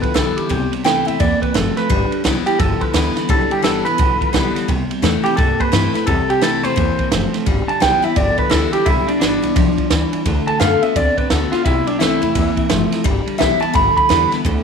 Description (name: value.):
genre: rockabilly.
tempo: 172 BPM.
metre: 4/4.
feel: swing 63% on 8ths.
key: G mixolydian.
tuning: A4 = 440 Hz.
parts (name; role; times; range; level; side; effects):
electric guitar through a small old amp; melody; 0.0-14.6 s; D4 to B5; -18 LUFS; right 1 dB; spring reverb, tape echo.
picked steel-string acoustic guitar; accompaniment; 0.0-14.6 s; G2 to F#4; -21 LUFS; left 11 dB; none.
electric guitar through a small old amp; riff; 0.0-14.6 s; G2 to C4; -24 LUFS; right 11 dB; lush chorus.
upright bass; bass; 0.0-14.6 s; F#1 to G2; -22 LUFS; left 1 dB; none.
compact cocktail drum kit; drums; 0.0-14.5 s; kick drum, ride cymbal, snare drum; -21 LUFS; right 2 dB; none.
room: moderate plate reverb, RT60 1.1 s, studio ambience.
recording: 1960s-style stereo with parts hard left and right.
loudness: -14 LUFS.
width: side -6 dB against mid.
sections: 0.0-14.6 A section.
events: none.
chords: 0.0 G6; 0.5 C6; 1.9 G6; 4.7 C6; 7.5 G6; 10.3 D6; 11.7 C6; 13.0 G6.